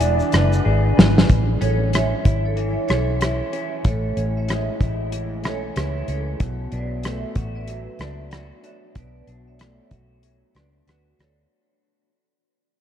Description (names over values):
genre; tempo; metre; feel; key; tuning
indie pop, bedroom pop; 94 BPM; 4/4; swing 60% on 16ths; A major; A4 = 440 Hz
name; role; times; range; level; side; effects
bansuri; melody; 0.0-1.0 s; D5; -30 LUFS; right 1 dB; ensemble chorus, tape echo
electric guitar through a small old amp; accompaniment; 0.0-12.1 s; A2 to B4; -28 LUFS; left 2 dB; wide subtle chorus, vibrato effect
warbly tape-like pad; sustained chords; 0.0-1.3 s; D3 to E4; -30 LUFS; right 1 dB; none
vintage muted fingered electric bass; bass; 0.0-11.4 s; E1 to D2; -22 LUFS; equal; none
damped 70s drum kit; drums; 0.0-11.4 s; hi-hat, kick drum, rim click, shaker, snare drum; -20 LUFS; equal; none
vibraphone with hard mallets; second line; 1.6-11.4 s; F#4 to E5; -30 LUFS; right 4 dB; ensemble chorus, tape echo
room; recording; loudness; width
moderate cathedral reverb, RT60 6.2 s; dreamy mix soaked in reverb, cassette tape; -18 LUFS; side -10 dB against mid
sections
0.0-1.3 A section; 1.3-11.5 B section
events
drum fill 0.7-1.3; fade-out 1.3-11.5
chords
0.0 E7; 1.3 Amaj7; 6.4 Bm7